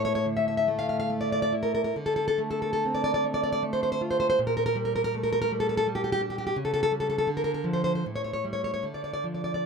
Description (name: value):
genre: romantic piece for solo classical guitar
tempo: 64-88 BPM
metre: 3/4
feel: rubato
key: D minor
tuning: A4 = 439 Hz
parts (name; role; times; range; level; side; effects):
- nylon-string guitar; solo; 0.0-9.7 s; A2 to F5; -25 LUFS; equal; tape echo
room: moderate studio reverb, RT60 0.6 s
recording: close, detailed microphones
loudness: -25 LUFS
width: side -5 dB against mid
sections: 0.0-9.7 A section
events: none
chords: 0.0 A5; 1.9 Dm; 4.4 Gm/Bb; 6.6 A7/C#; 7.3 Dm; 8.0 A7; 8.8 Dm